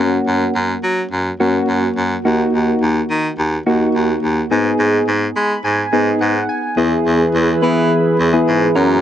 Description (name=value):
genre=pop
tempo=106 BPM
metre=4/4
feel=straight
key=unclear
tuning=A4 = 441 Hz
part: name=soft electric-piano-like synth keys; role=accompaniment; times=0.0-9.0 s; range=A#3 to B5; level=-17 LUFS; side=left 1 dB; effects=chorus
part: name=warm baritone saxophone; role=bass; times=0.0-9.0 s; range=D#2 to G#3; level=-18 LUFS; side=equal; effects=none
part: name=chorused pulse-width pad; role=sustained chords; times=6.8-9.0 s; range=E3 to B4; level=-16 LUFS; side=equal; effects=none
room=wet plate reverb, RT60 3.0 s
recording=dreamy mix soaked in reverb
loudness=-14 LUFS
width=side -10 dB against mid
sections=0.0-6.8 A section; 6.8-9.0 B section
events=synth keys fill 5.1-6.8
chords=0.0 F#; 2.2 D#m; 4.5 G#m; 6.8 E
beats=0.55 1.12 1.68 | 2.25 2.81 3.38 3.95 | 4.51 5.08 5.64 6.21 | 6.78 7.34 7.91 8.47